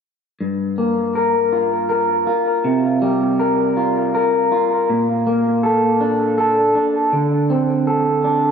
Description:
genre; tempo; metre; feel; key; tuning
rock; 54 BPM (dotted quarters); 6/8; straight; G minor; A4 = 439 Hz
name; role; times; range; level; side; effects
electric guitar through a small old amp; arpeggios; 0.4-8.5 s; G2 to Bb4; -15 LUFS; equal; analog delay, slapback echo
room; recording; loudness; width
wet lush hall reverb, RT60 2.6 s; big arena sound; -15 LUFS; side -6 dB against mid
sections
0.4-8.5 A section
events
none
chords
0.4 Gm7; 2.6 C7sus4; 4.9 Bbmaj7; 7.1 D5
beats
| 0.40 1.52 | 2.65 3.77 | 4.89 6.01 | 7.12 8.24

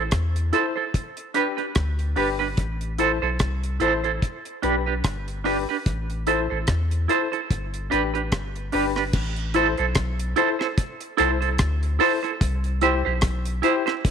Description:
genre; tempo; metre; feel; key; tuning
roots reggae; 73 BPM; 4/4; swing 57% on 16ths; A minor; A4 = 439 Hz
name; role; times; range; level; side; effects
semi-hollow electric guitar; accompaniment; 0.0-13.9 s; D4 to C5; -24 LUFS; right 11 dB; tremolo, dub echo
soft dub sub bass; bass; 0.0-13.6 s; G1 to E2; -26 LUFS; left 1 dB; none
deep reggae drum kit; drums; 0.1-14.1 s; crash cymbal, hi-hat, kick drum, rim click; -25 LUFS; equal; none
warm upright piano; stabs; 0.5-13.8 s; D4 to C5; -27 LUFS; left 12 dB; none
room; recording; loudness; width
light reverb, small room ambience; 1960s-style stereo with parts hard left and right; -21 LUFS; side -7 dB against mid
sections
0.0-9.1 A section; 9.1-14.1 B section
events
none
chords
0.0 Am; 0.9 G; 2.6 Am; 4.2 G; 5.9 Am; 7.5 G; 9.1 Am; 12.4 C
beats
0.12 0.94 1.76 | 2.58 3.40 4.22 5.04 | 5.86 6.68 7.50 8.32 | 9.14 9.95 10.77 11.59 | 12.41 13.23 14.04

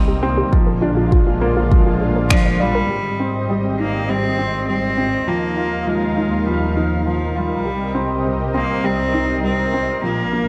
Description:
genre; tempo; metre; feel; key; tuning
piano and strings electronica; 101 BPM; 4/4; straight; Ab lydian; A4 = 443 Hz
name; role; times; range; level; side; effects
lush unison pad; sustained chords; 0.0-10.5 s; C3 to F5; -28 LUFS; equal; chorus
dark upright piano; riff; 0.0-10.5 s; F3 to F4; -24 LUFS; equal; digital delay
warm symphonic double bass section; bass; 0.0-10.5 s; Ab1 to Eb2; -26 LUFS; equal; sidechain pumping
soft round pluck; arpeggios; 0.1-2.8 s; F4 to D5; -27 LUFS; equal; chorus, sidechain pumping, digital delay
electronic kick drum; drums; 0.5-2.4 s; none; -18 LUFS; equal; overdrive
rich cello; melody; 2.3-10.5 s; F3 to C4; -24 LUFS; equal; none
electronic finger snaps; drums; 2.3-2.4 s; none; -25 LUFS; equal; overdrive
room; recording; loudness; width
light reverb, small room ambience; none; -18 LUFS; mono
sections
0.0-2.9 A section; 2.9-10.5 B section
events
filter sweep on synth arpeggio sound 0.0-2.9; band accent 2.3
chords
0.0 Cm7; 0.5 Bb7; 2.9 Abmaj7; 5.3 Ebsus2; 7.7 Cm7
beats
| 0.53 1.12 1.71 2.31 | 2.90 3.50 4.09 4.68 | 5.28 5.87 6.47 7.06 | 7.66 8.25 8.84 9.44 | 10.03

